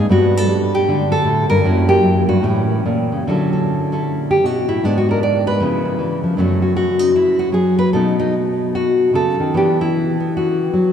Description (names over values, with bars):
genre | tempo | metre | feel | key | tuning
solo jazz | 152 BPM | 4/4 | swing 64% on 8ths, rubato | D major from 3.2 s | A4 = 440 Hz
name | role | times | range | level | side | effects
nylon-string guitar | solo | 0.0-10.9 s | F#2 to D5 | -14 LUFS | equal | none
room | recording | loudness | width
wet cathedral reverb, RT60 5.1 s | in a vast, echoing space | -14 LUFS | side -8 dB against mid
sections
0.0-3.2 A section; 3.2-10.9 B section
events
nylon-string guitar solo 3.2-10.9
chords
0.1 Gadd9; 1.6 F#7b9; 2.4 A; 3.2 Dmaj9; 4.8 G#dim; 5.6 C#7#9; 6.4 F#m; 7.9 B7; 9.5 Em9